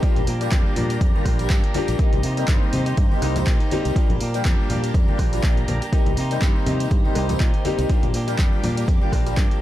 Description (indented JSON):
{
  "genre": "filtered disco house",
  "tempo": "122 BPM",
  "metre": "4/4",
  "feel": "swing 56% on 16ths",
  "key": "unclear",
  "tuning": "A4 = 440 Hz",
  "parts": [
    { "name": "clear grand piano", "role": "accompaniment", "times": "0.0-9.4 s", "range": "G3 to G4", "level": "-27 LUFS", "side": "left 2 dB", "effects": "phaser, vintage 12-bit sampler grit, sidechain pumping" },
    { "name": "string machine, full ensemble", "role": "sustained chords", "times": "0.0-9.6 s", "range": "Eb4 to Bb5", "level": "-32 LUFS", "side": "equal", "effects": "ensemble chorus, sidechain pumping" },
    { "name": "direct-recorded clean electric guitar", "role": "riff", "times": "0.0-9.6 s", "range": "F3 to G4", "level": "-32 LUFS", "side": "right 2 dB", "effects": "sidechain pumping" },
    { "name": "fingered electric bass", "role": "bass", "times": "0.0-9.5 s", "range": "Bb1 to C3", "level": "-25 LUFS", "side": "equal", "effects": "sidechain pumping" },
    { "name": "electronic kick drum", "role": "drums", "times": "0.0-9.5 s", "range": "none", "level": "-19 LUFS", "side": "equal", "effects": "overdrive" },
    { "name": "punchy analog drum machine", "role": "drums", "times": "0.0-9.6 s", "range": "handclaps, hi-hat, rim click", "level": "-32 LUFS", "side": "equal", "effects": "overdrive, sidechain pumping on hats, sidechain pumping on cymbals" },
    { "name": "tambourine and congas", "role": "percussion", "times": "0.0-9.6 s", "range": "none", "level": "-33 LUFS", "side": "left 2 dB", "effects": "sidechain pumping on perc" }
  ],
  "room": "little or no reverb",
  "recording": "dark, warm production",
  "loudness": "-18 LUFS",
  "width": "side -14 dB against mid",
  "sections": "0.0-9.6 A section",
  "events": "none",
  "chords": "0.0 Bb6; 2.0 Cm7; 4.0 Bb6; 5.9 Cm7; 7.9 Bb6"
}